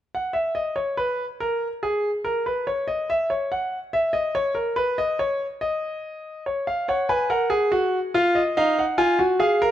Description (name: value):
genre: classical, baroque-style 3-part fugue for grand piano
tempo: 71 BPM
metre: 4/4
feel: straight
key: unclear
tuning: A4 = 440 Hz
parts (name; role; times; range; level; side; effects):
- clear concert grand piano; solo; 0.1-9.7 s; D#4 to G#5; -21 LUFS; equal; none
room: moderate recital hall reverb, RT60 1.5 s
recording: close, detailed microphones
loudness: -21 LUFS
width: side -11 dB against mid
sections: 0.0-9.7 A section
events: none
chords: 0.0 N.C.; 6.4 F#5; 8.1 D#madd9